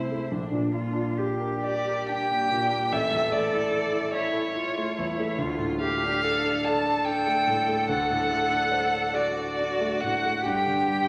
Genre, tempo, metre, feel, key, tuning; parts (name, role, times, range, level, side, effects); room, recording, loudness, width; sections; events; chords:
classical, slow romantic movement for piano trio; 47 BPM (dotted quarters); 6/8; uneven beats, rubato; A4 = 440 Hz
rich violin; melody; 0.0-11.1 s; C5 to A5; -28 LUFS; equal
rich cello; second line; 0.0-11.1 s; D4 to A4; -32 LUFS; equal
warm grand piano; accompaniment; 0.0-11.1 s; A1 to E5; -32 LUFS; equal
wet scoring stage reverb, RT60 2.0 s; -26 LUFS; mono
0.0-11.1 A section
0.3 Gm/Bb; 2.9 A; 5.4 Dm; 7.9 D7; 10.5 G5